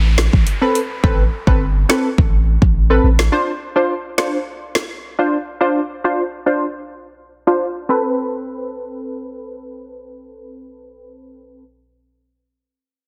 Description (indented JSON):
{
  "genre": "dancehall",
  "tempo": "105 BPM",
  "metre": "4/4",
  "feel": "straight",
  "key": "A minor",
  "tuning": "A4 = 443 Hz",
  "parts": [
    { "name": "punchy sub bass", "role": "bass", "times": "0.0-3.3 s", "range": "G1 to A1", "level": "-18 LUFS", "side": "equal", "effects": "none" },
    { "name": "downlifter", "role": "sound effects", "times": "0.0-3.3 s", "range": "none", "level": "-35 LUFS", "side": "equal", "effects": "none" },
    { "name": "afro-pop drum kit", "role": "drums", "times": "0.2-4.9 s", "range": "hi-hat, kick drum, rim click, snare drum", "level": "-19 LUFS", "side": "equal", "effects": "none" },
    { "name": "punchy chord stab", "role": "accompaniment", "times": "0.6-11.6 s", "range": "C4 to C5", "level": "-21 LUFS", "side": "equal", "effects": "chorus, sidechain pumping, low-pass filter" }
  ],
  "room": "light reverb, digital ambience",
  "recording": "dense, heavily limited modern master",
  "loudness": "-17 LUFS",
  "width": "mono",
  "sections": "0.0-7.9 A section; 7.9-10.2 B section",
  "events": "filter sweep on synth stab 0.0-7.9",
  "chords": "0.0 Amadd9; 3.3 Dm7; 7.9 Amadd9"
}